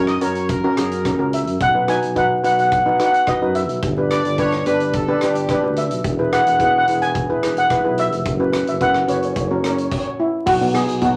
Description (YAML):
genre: calypso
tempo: 108 BPM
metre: 4/4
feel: straight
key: B major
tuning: A4 = 440 Hz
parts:
  - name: steel pan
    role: melody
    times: 0.0-11.2 s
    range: E4 to G#5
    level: -20 LUFS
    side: equal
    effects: none
  - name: bright horn section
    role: second line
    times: 0.0-5.6 s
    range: G4 to D#5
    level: -28 LUFS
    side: equal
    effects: none
  - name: steel pan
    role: accompaniment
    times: 0.0-11.2 s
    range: B3 to B4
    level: -23 LUFS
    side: equal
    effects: none
  - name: dark tuba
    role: bass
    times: 0.0-11.2 s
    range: E1 to F#2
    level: -27 LUFS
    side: equal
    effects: none
  - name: big rock drum kit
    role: drums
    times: 0.1-11.2 s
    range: crash cymbal, hi-hat, kick drum, rim click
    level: -30 LUFS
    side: equal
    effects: none
room: wet club reverb, RT60 0.5 s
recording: vinyl crackle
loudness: -18 LUFS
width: mono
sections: 0.0-10.5 A section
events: none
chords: 0.0 F#; 1.6 B; 3.8 G; 6.0 E; 8.3 F#sus4; 9.4 F#; 10.5 B